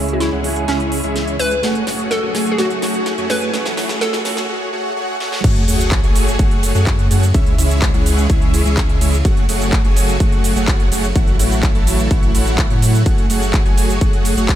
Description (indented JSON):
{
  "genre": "EDM, festival progressive house",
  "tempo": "126 BPM",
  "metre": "4/4",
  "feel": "straight",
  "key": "F# minor",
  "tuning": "A4 = 443 Hz",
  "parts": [
    { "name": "hollow square pluck", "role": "melody", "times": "0.0-4.5 s", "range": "C#4 to B4", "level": "-22 LUFS", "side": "equal", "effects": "chorus, tape echo" },
    { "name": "fingerpicked steel-string acoustic guitar", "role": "accompaniment", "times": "0.0-4.5 s", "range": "C#3 to A4", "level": "-26 LUFS", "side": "right 2 dB", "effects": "sidechain pumping, tape echo" },
    { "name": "clear symphonic string section", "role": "sustained chords", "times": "0.0-14.6 s", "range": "C#3 to G#4", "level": "-26 LUFS", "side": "equal", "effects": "sidechain pumping, low-pass filter" },
    { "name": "dense compressed supersaw", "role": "riff", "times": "0.0-14.6 s", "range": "G#3 to A5", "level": "-21 LUFS", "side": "right 1 dB", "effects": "sidechain pumping, low-pass filter, tape echo" },
    { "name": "saturated sub bass", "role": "bass", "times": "0.0-14.6 s", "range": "F#1 to A2", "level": "-19 LUFS", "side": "equal", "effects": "sidechain pumping" },
    { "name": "riser, swell and sub drop", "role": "sound effects", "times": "1.8-7.3 s", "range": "none", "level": "-27 LUFS", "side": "equal", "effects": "none" },
    { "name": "big-room dance drum kit", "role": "drums", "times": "0.1-14.6 s", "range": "crash cymbal, handclaps, hi-hat, ride cymbal, shaker, snare drum", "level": "-24 LUFS", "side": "right 1 dB", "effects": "high-pass filter on hats, high-pass filter on snare, high-pass filter on cymbals, high-pass filter on perc" },
    { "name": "electronic kick drum", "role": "drums", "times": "5.4-14.6 s", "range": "none", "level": "-16 LUFS", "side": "equal", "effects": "none" }
  ],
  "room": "light reverb",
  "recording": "high-pass filter",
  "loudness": "-14 LUFS",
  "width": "side -12 dB against mid",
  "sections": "0.0-5.4 A section; 5.4-14.6 B section",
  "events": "build-up 0.0-5.4; drum fill 0.0-4.5, 5.2; filter sweep on supersaw synth 0.0-5.4; filter sweep 0.0-5.4; break 4.5-5.4; swell 4.5-5.4; drop 5.4-14.6; impact 5.4-7.3",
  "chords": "0.0 C#m; 1.6 F#madd9; 3.5 A6; 5.4 F#madd9; 7.3 C#m; 9.3 F#madd9; 11.2 A6; 13.1 F#madd9"
}